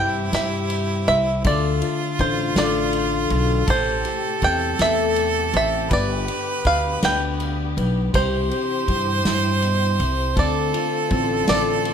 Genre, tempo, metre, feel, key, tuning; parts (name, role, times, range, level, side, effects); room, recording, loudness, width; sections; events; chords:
acoustic folk duo or small band; 54 BPM (dotted quarters); 6/8; straight; C major; A4 = 439 Hz
bluegrass banjo; melody; 0.0-11.9 s; C5 to G5; -23 LUFS; right 1 dB; plate reverb, tape echo
clear harmonica; second line; 0.0-11.9 s; E4 to C5; -25 LUFS; right 4 dB
fingerpicked plugged-in steel-string acoustic guitar; accompaniment; 0.0-11.9 s; A2 to C5; -26 LUFS; left 6 dB
warm chamber string section; sustained chords; 0.0-11.9 s; C3 to C5; -31 LUFS; equal
upright bass; bass; 0.0-11.9 s; G1 to G2; -24 LUFS; equal
unplugged drum kit; drums; 0.3-11.9 s; kick drum, ride cymbal, snare drum; -28 LUFS; equal
moderate studio reverb, RT60 0.6 s; -18 LUFS; side -8 dB against mid
0.0-11.9 A section
0.0 C; 1.4 Dm; 3.7 Am7; 5.9 G; 8.1 C; 10.4 Dm7